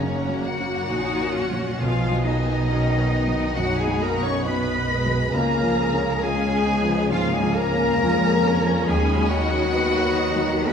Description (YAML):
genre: cinematic, emotional film score for orchestra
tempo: 68 BPM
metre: 4/4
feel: rubato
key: unclear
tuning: A4 = 440 Hz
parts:
  - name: clear cello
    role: melody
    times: 0.0-10.7 s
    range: C#4 to C#5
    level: -28 LUFS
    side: right 2 dB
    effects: none
  - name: clear symphonic violin section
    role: melody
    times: 0.0-10.7 s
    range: C#5 to C#6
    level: -30 LUFS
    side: left 3 dB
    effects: none
  - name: bright silver concert flute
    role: second line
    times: 0.0-10.7 s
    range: C#5 to C#6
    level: -31 LUFS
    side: left 2 dB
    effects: none
  - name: rich symphonic violin section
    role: second line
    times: 0.0-10.7 s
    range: C#5 to B5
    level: -33 LUFS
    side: left 2 dB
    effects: none
  - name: warm clarinet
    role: second line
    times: 0.0-10.7 s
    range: C#4 to C#5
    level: -31 LUFS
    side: left 3 dB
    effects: none
  - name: rich symphonic viola section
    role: accompaniment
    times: 0.0-10.7 s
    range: G#3 to D#4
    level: -31 LUFS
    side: right 2 dB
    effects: none
  - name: warm baby grand piano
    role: accompaniment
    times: 0.0-10.7 s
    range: B1 to B4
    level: -27 LUFS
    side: left 1 dB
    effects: none
  - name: warm French horn section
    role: sustained chords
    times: 0.0-10.7 s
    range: C#3 to C#4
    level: -27 LUFS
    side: left 4 dB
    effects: none
  - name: rich symphonic double bass section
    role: bass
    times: 0.0-10.7 s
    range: F#1 to E#2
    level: -29 LUFS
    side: right 2 dB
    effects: none
  - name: warm studio cello section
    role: bass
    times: 0.0-10.7 s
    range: F#2 to E#3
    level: -28 LUFS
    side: right 2 dB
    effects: none
room: wet scoring stage reverb, RT60 1.7 s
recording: small room ambience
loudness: -19 LUFS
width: side -7 dB against mid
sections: 0.0-10.7 A section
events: none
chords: 0.0 F#; 1.8 B; 5.3 C#; 8.9 B/D#